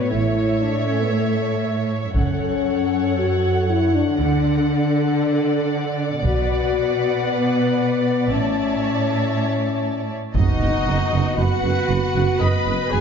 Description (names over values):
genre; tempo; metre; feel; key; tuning
cinematic, epic orchestral film score; 117 BPM; 4/4; straight; unclear; A4 = 440 Hz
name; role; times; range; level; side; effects
dark symphonic violin section; second line; 0.0-13.0 s; D#4 to A5; -27 LUFS; left 2 dB; none
rich symphonic viola section; accompaniment; 0.0-13.0 s; D#4 to D5; -28 LUFS; right 4 dB; none
dark French horn section; sustained chords; 0.0-13.0 s; A3 to F#4; -22 LUFS; left 5 dB; none
warm symphonic cello section; bass; 0.0-13.0 s; F#2 to D3; -24 LUFS; right 4 dB; none
rich symphonic double bass section; bass; 0.1-13.0 s; F#1 to D2; -24 LUFS; right 4 dB; none
taiko ensemble; drums; 2.1-3.1, 6.2-7.2, 10.3-11.3 s; none; -24 LUFS; equal; none
bright trumpet section; stabs; 10.3-13.0 s; F#4 to D#5; -27 LUFS; right 1 dB; none
impact; sound effects; 10.3-12.4 s; none; -30 LUFS; equal; none
clear symphonic violin section; melody; 10.4-13.0 s; D#5 to B5; -28 LUFS; left 4 dB; none
mellow tuba; bass; 10.4-13.0 s; F#1; -26 LUFS; right 4 dB; none
room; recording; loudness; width
moderate scoring stage reverb, RT60 1.5 s; dark, warm production, nothing above 7.5 kHz; -18 LUFS; side -6 dB against mid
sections
0.0-10.4 A section; 10.4-13.0 B section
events
impact 10.4-12.4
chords
0.1 A; 2.1 F#m; 4.2 D; 6.3 Bm; 8.3 A; 10.4 B/F#